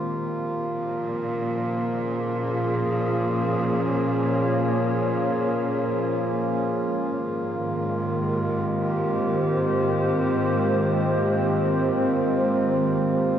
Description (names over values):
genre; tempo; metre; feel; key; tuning
ambient; free time; none; none; Bb dorian; A4 = 440 Hz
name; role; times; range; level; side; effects
warbly tape-like pad; sustained chords; 0.0-13.4 s; Eb3 to Db5; -24 LUFS; equal; chorus, built-in reverb
clear studio cello section; bass; 0.0-13.4 s; Ab2 to Bb2; -30 LUFS; equal; tube saturation
pedal harmonium; drone; 0.0-13.4 s; Bb3 to F4; -28 LUFS; right 1 dB; none
room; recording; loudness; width
wet huge ambient reverb, RT60 7.9 s; worn, warbling old tape, cassette tape, warbly pitch drift; -22 LUFS; side -9 dB against mid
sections
0.0-13.4 A section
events
none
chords
0.0 Bbm7; 6.9 Abmaj7